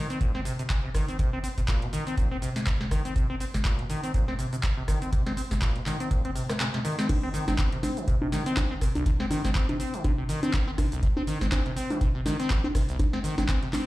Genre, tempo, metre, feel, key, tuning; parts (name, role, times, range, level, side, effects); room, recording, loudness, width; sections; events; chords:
acid house; 122 BPM; 4/4; swing 56% on 16ths; C minor; A4 = 436 Hz
acid bass, saw; riff; 0.0-13.9 s; C2 to C4; -30 LUFS; equal; wide subtle chorus, tape echo
booming analog drum machine; drums; 0.1-13.8 s; cabasa, congas, crash cymbal, handclaps, hi-hat, rim click, snare drum; -32 LUFS; equal
electronic kick drum; drums; 0.2-13.6 s; -27 LUFS; equal
moderate small room reverb, RT60 0.5 s; played on a big sound system in a bare room, large studio reverb; -25 LUFS; side -17 dB against mid
0.0-7.1 A section; 7.1-13.9 B section
kick drops out 6.6-7.1; drum fill 6.6-7.1; drop 7.1-13.9